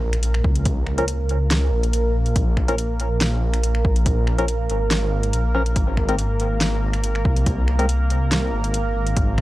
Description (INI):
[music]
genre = deep dubstep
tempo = 141 BPM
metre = 4/4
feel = swing 53% on 16ths, half-time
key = Bb minor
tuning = A4 = 435 Hz
[part]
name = deep dark ambient pad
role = sustained chords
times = 0.0-9.4 s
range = Bb3 to Bb4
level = -27 LUFS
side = right 2 dB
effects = chorus, built-in reverb
[part]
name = dark detuned saw bass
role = bass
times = 0.0-9.4 s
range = Ab1 to Db2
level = -21 LUFS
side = equal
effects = none
[part]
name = impact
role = sound effects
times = 0.0-0.7 s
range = none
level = -38 LUFS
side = equal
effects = none
[part]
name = deep house drum kit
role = drums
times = 0.1-9.4 s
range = finger snaps, hi-hat, snare drum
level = -25 LUFS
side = equal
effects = overdrive
[part]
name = electronic kick drum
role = drums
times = 0.4-9.4 s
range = none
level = -21 LUFS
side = equal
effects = overdrive
[part]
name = percussive organ stab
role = stabs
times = 1.0-7.9 s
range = F3 to Bb4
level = -27 LUFS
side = left 2 dB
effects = wide subtle chorus, dub echo
[sound]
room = digital ambience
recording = dry, gritty hardware recording, cassette tape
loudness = -18 LUFS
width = side -17 dB against mid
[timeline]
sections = 0.0-9.4 A section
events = impact 0.0-0.7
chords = 0.0 Bbm; 5.8 Abadd9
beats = 0.23 | 0.66 1.08 1.51 1.93 | 2.36 2.78 3.21 3.63 | 4.06 4.49 4.91 5.34 | 5.76 6.19 6.61 7.04 | 7.46 7.89 8.31 8.74 | 9.16